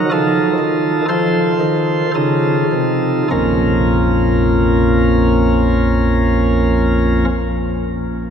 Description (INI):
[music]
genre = classical, chorale-style piece for pipe organ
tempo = 50-65 BPM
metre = 3/4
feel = rubato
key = Bb minor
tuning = A4 = 439 Hz
[part]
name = chamber organ, sparkling flutes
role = solo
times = 0.0-7.2 s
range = Bb1 to C5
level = -13 LUFS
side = equal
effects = none
[sound]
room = wet cathedral reverb, RT60 6.5 s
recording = heard from further back in the room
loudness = -13 LUFS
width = side -7 dB against mid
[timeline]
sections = 0.0-3.3 A section; 3.3-6.8 B section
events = slowing down 0.0-3.3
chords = 0.1 F7; 3.3 Bbm